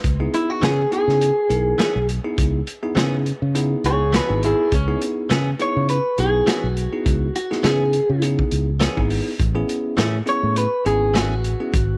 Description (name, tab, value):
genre	straight-eighth soul blues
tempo	103 BPM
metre	4/4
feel	swing 56% on 16ths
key	C# minor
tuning	A4 = 440 Hz
part	fingered electric bass	bass	0.0-12.0 s	G#1 to C#3	-24 LUFS	equal	none
part	crunchy breakbeat drum kit	drums	0.0-11.9 s	hi-hat, kick drum, snare drum	-26 LUFS	equal	none
part	bell-like tine electric piano	accompaniment	0.2-11.7 s	B3 to A#4	-29 LUFS	equal	none
part	electric guitar through a small old amp	melody	0.3-12.0 s	C#4 to C#5	-23 LUFS	equal	none
part	direct-recorded clean electric guitar	stabs	0.6-11.3 s	E3 to G#4	-32 LUFS	equal	none
room	light reverb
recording	lossy compression artefacts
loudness	-20 LUFS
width	mono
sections	0.0-12.0 A section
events	clean electric guitar solo 0.0-12.0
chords	0.0 C#m7; 9.4 Amaj7